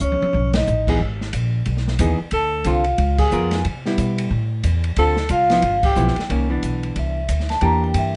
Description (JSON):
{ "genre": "jazz, small-group swing and bop", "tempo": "182 BPM", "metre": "4/4", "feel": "swing 61% on 8ths", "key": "C major", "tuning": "A4 = 442 Hz", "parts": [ { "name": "vibraphone with medium mallets", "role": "melody", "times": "0.0-8.2 s", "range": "C#5 to Bb5", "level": "-24 LUFS", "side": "equal", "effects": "none" }, { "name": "breathy alto saxophone", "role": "second line", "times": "0.0-6.2 s", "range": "C#4 to A4", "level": "-27 LUFS", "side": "equal", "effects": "none" }, { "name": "upright bass", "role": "bass", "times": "0.0-8.2 s", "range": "G1 to C3", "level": "-23 LUFS", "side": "equal", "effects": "none" }, { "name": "open jazz drum kit", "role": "drums", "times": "0.0-8.0 s", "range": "crash cymbal, hi-hat, kick drum, ride cymbal, snare drum, toms", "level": "-29 LUFS", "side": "equal", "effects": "none" }, { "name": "hollow-body jazz guitar", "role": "accompaniment", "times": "0.9-8.2 s", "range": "D3 to Bb4", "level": "-25 LUFS", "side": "equal", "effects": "none" } ], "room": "light reverb", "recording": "nothing above 10.6 kHz", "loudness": "-20 LUFS", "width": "mono", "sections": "0.0-6.3 A section; 6.3-8.2 B section", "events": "drum fill 0.0-0.7; band accent 0.5, 3.2, 5.8; vibraphone solo 6.3-8.2", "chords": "0.3 B7; 1.0 Emaj7; 2.3 Dm7; 3.0 Db6; 3.6 Cmaj7; 4.3 A5; 5.0 Dm7; 5.6 G6; 6.3 Cmaj9; 7.6 Em7b5", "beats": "0.01 0.34 0.67 | 1.00 1.33 1.66 1.99 | 2.32 2.65 2.99 3.32 | 3.65 3.98 4.31 4.64 | 4.97 5.30 5.63 5.96 | 6.29 6.62 6.95 7.28 | 7.62 7.95" }